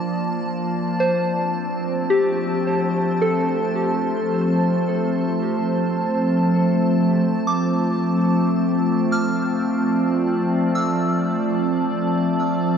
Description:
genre	ambient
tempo	54 BPM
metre	4/4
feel	straight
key	F major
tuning	A4 = 440 Hz
part	glassy FM pad	sustained chords	0.0-12.8 s	F3 to A5	-19 LUFS	equal	ensemble chorus, built-in reverb
part	soft synth bell	arpeggios	0.0-12.8 s	G4 to F6	-26 LUFS	equal	chorus, phaser, tape echo
part	analog drone	drone	3.2-12.8 s	F3	-29 LUFS	right 1 dB	chorus
room	wet cathedral reverb, RT60 6.6 s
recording	in a vast, echoing space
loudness	-18 LUFS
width	side -7 dB against mid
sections	0.0-12.8 A section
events	none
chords	0.0 Bbmaj7/F; 1.0 F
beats	| 1.02 2.14 3.25 4.35 | 5.46 6.57 7.67 8.76 | 9.86 10.95 12.04

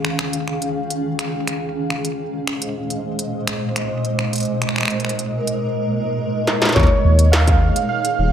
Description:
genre	IDM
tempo	105 BPM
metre	4/4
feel	straight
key	unclear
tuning	A4 = 445 Hz
part	granular cloud pad	sustained chords	0.0-8.3 s	Bb2 to F5	-22 LUFS	equal	built-in reverb
part	industrial drum kit	drums	0.0-8.2 s	finger snaps, hi-hat, snare drum	-22 LUFS	equal	none
part	warbly lo-fi synth keys	melody	6.7-8.3 s	Db5 to F5	-20 LUFS	right 3 dB	chorus, digital delay
part	dark detuned saw bass	bass	6.8-8.3 s	Eb1 to Eb2	-14 LUFS	equal	tube saturation
part	electronic kick drum	drums	6.8-7.6 s	none	-17 LUFS	equal	distortion
room	light reverb, digital ambience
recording	none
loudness	-17 LUFS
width	side -9 dB against mid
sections	0.0-6.8 A section; 6.8-8.3 B section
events	filter sweep on ambient pad 0.0-6.8; drum fill 6.5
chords	0.0 Eb9sus4; 2.2 Bb9sus4; 6.8 Eb9sus4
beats	0.47 1.04 1.62 | 2.19 2.76 3.33 3.90 | 4.47 5.04 5.62 6.19 | 6.76 7.33 7.90

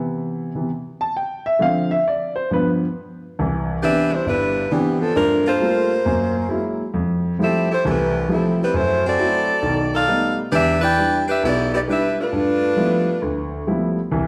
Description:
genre	jazz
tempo	134 BPM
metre	4/4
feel	swing 67% on 8ths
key	C major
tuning	A4 = 440 Hz
part	warm grand piano	accompaniment	0.0-14.3 s	G1 to A5	-23 LUFS	equal	none
part	mellow saxophone section	melody	3.8-13.5 s	E3 to G5	-21 LUFS	equal	none
room	wet recital hall reverb, RT60 1.5 s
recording	none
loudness	-20 LUFS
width	mono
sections	0.0-3.4 A section; 3.4-14.3 B section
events	grand piano solo 0.0-3.4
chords	0.0 Cmaj7; 1.6 Dm7; 2.5 G7; 3.4 Cmaj9; 5.2 Gm9; 6.1 F#9; 6.9 Fmaj9; 8.7 F#m7b5; 9.6 B7alt; 10.5 Em7; 12.3 G13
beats	0.24 0.69 1.14 | 1.59 2.03 2.48 2.93 | 3.38 3.82 4.27 4.71 | 5.16 5.61 6.05 6.50 | 6.95 7.40 7.84 8.29 | 8.74 9.19 9.63 10.08 | 10.53 10.97 11.42 11.87 | 12.32 12.76 13.21 13.66 | 14.11

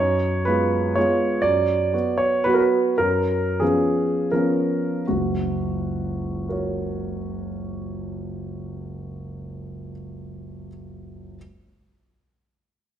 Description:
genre	classical, romantic triple-time dance for piano with dotted rhythms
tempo	74-128 BPM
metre	3/4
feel	rubato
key	F# major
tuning	A4 = 440 Hz
part	warm grand piano	solo	0.0-11.4 s	F#1 to D5	-21 LUFS	right 1 dB	none
room	wet recital hall reverb, RT60 1.5 s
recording	faint mains hum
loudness	-20 LUFS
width	side -10 dB against mid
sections	0.0-5.1 A section; 5.1-9.2 B section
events	slowing down 0.7-5.1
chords	0.0 C#7/F#; 1.4 Bm/F#; 3.0 C#7/F#; 5.1 F#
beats	0.46 0.97 | 1.43 1.93 2.46 | 2.99 3.61 4.33 | 5.08 5.78 6.47 | 7.13 7.82 8.54

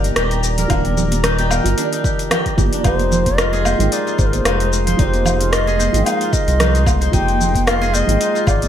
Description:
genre	organic downtempo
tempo	112 BPM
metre	4/4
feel	swing 55% on 16ths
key	F dorian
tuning	A4 = 440 Hz
part	felt-muted upright piano	accompaniment	0.0-8.7 s	Eb3 to G5	-25 LUFS	right 1 dB	lush chorus, sidechain pumping, ping-pong delay
part	warm analog pad	sustained chords	0.0-8.7 s	Ab3 to C6	-27 LUFS	left 1 dB	chorus, sidechain pumping
part	steel-string zither	arpeggios	0.0-8.7 s	D4 to C5	-24 LUFS	left 2 dB	ping-pong delay
part	round analog bass	bass	0.0-8.7 s	Eb1 to C2	-19 LUFS	equal	tube saturation, sidechain pumping
part	afro-pop drum kit	drums	0.0-8.7 s	hi-hat, rim click, shaker, woodblock	-21 LUFS	left 2 dB	overdrive, gated reverb
part	congas	percussion	0.0-8.7 s	none	-26 LUFS	right 4 dB	none
part	electronic kick drum	drums	0.7-8.6 s	none	-20 LUFS	equal	overdrive
part	bansuri	melody	2.8-8.7 s	Bb4 to G5	-21 LUFS	right 1 dB	ping-pong delay
room	light reverb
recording	bright 1980s-style digital production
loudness	-14 LUFS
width	side -10 dB against mid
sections	0.0-8.7 A section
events	none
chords	0.0 Ebmaj7; 2.8 Fm7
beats	0.17 | 0.70 1.24 1.77 2.31 | 2.85 3.38 3.92 4.45 | 4.99 5.52 6.06 6.60 | 7.13 7.67 8.20

